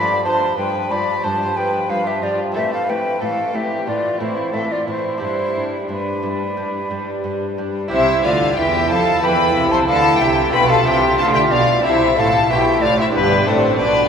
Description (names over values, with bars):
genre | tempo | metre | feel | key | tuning
classical, baroque-style concerto movement with solo episodes | 91 BPM | 4/4 | straight | C major | A4 = 441 Hz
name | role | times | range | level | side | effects
rich chamber violin section | melody | 0.0-14.1 s | C4 to C6 | -23 LUFS | left 6 dB | none
silver concert flute | melody | 0.0-14.1 s | G4 to B5 | -20 LUFS | left 1 dB | none
rich chamber violin section | second line | 0.0-14.1 s | B3 to D5 | -23 LUFS | equal | none
dark chamber viola section | accompaniment | 0.0-14.1 s | E3 to F4 | -23 LUFS | right 1 dB | none
lute | accompaniment | 0.0-14.1 s | G2 to G4 | -29 LUFS | right 1 dB | none
rich chamber cello section | bass | 0.3-14.1 s | G2 to F3 | -25 LUFS | right 3 dB | none
rich chamber double bass section | bass | 7.9-14.1 s | G1 to F2 | -26 LUFS | right 3 dB | none
room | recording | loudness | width
wet cathedral reverb, RT60 6.7 s | recorded in a church or concert hall | -15 LUFS | side -7 dB against mid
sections
0.0-7.9 A section; 7.9-14.1 B section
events
none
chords
0.0 G7; 2.6 Am; 5.2 G; 7.9 C; 10.5 G13/B; 11.8 C; 13.1 G